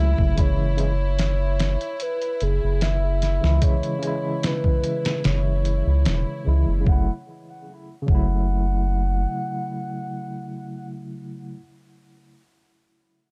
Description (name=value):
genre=trip hop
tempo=74 BPM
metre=4/4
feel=straight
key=F# minor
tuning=A4 = 441 Hz
part: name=pure breathy sine lead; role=melody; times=0.0-10.9 s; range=G#4 to F#5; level=-32 LUFS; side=equal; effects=chorus, tape echo
part: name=barky tine electric piano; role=accompaniment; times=0.0-11.6 s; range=C#3 to E4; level=-31 LUFS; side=equal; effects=tremolo, tape echo
part: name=rich chamber violin section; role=sustained chords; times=0.0-6.9 s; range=E4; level=-39 LUFS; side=equal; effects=vintage 12-bit sampler grit
part: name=round analog bass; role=bass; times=0.0-9.3 s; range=E1 to C#2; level=-23 LUFS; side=equal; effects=tube saturation
part: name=trip hop sampler-style drum kit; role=drums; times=0.2-8.3 s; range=hi-hat, kick drum, snare drum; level=-24 LUFS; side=equal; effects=none
room=little or no reverb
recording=dark, warm production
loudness=-23 LUFS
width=mono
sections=0.0-6.9 A section; 6.9-10.1 B section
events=none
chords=0.4 C#m/F#; 6.9 F#m7